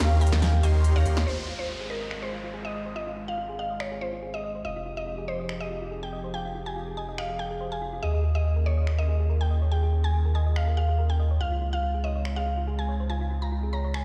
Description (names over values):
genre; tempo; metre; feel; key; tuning
future bass; 142 BPM; 4/4; swing 54% on 16ths, half-time; Ab major; A4 = 439 Hz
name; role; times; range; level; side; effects
mallet-like synth pluck; melody; 0.0-14.0 s; Bb4 to Bb5; -36 LUFS; equal; chorus, digital delay
airy breathy pad; sustained chords; 0.0-14.0 s; Db3 to Ab4; -42 LUFS; equal; chorus
airy dreamy lead; arpeggios; 0.0-1.2 s; F5 to C6; -41 LUFS; equal; chorus, phaser
thumb-piano-like synth pluck; arpeggios; 0.0-14.0 s; F4 to Bb5; -41 LUFS; equal; chorus, digital delay
dense compressed supersaw; riff; 0.0-1.2 s; Eb4 to C6; -36 LUFS; equal; low-pass filter, digital delay
saturated sub bass; bass; 0.0-14.0 s; F1 to Eb2; -28 LUFS; equal; none
big-room dance drum kit; drums; 0.0-14.0 s; crash cymbal, finger snaps, hi-hat, snare drum; -36 LUFS; equal; low-pass filter on hats, low-pass filter on snare, low-pass filter on cymbals
downlifter; sound effects; 1.3-4.6 s; none; -42 LUFS; equal; none
room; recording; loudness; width
light reverb; played on a big sound system in a bare room, large studio reverb, small room ambience; -27 LUFS; mono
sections
0.0-1.3 A section; 1.3-14.0 B section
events
drop 0.0-1.3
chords
0.0 Eb7; 1.3 Ab6; 4.6 Fm7; 8.0 Eb7sus4; 11.4 Dbmaj7